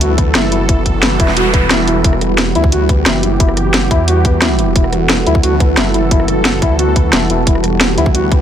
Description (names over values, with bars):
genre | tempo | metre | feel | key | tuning
dark technical drum and bass | 177 BPM | 4/4 | straight | E minor | A4 = 440 Hz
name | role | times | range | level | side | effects
sweeping resonant pad | sustained chords | 0.0-8.4 s | E3 to A4 | -20 LUFS | right 2 dB | chorus, sidechain pumping
felt-muted upright piano | arpeggios | 0.0-8.4 s | E4 to B4 | -19 LUFS | left 3 dB | sidechain pumping, ping-pong delay
snarling distorted saw bass | bass | 0.0-8.4 s | E1 to E2 | -16 LUFS | equal | overdrive
drum and bass drum kit | drums | 0.0-8.4 s | hi-hat, rim click, snare drum | -15 LUFS | equal | none
deep dark ambient pad | texture | 0.0-8.4 s | G3 to B5 | -20 LUFS | right 2 dB | chorus, built-in reverb, sidechain pumping
electronic kick drum | drums | 0.2-8.4 s | none | -13 LUFS | equal | none
noise sweep | sound effects | 0.9-2.0 s | none | -21 LUFS | right 3 dB | none
room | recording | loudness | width
light reverb | none | -10 LUFS | side -9 dB against mid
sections
0.0-8.4 A section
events
noise sweep 0.9-2.0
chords
0.0 Emadd9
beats
0.01 0.35 | 0.69 1.03 1.37 1.71 | 2.04 2.38 2.72 3.06 | 3.40 3.74 4.08 4.42 | 4.76 5.10 5.43 5.77 | 6.11 6.45 6.79 7.13 | 7.47 7.81 8.15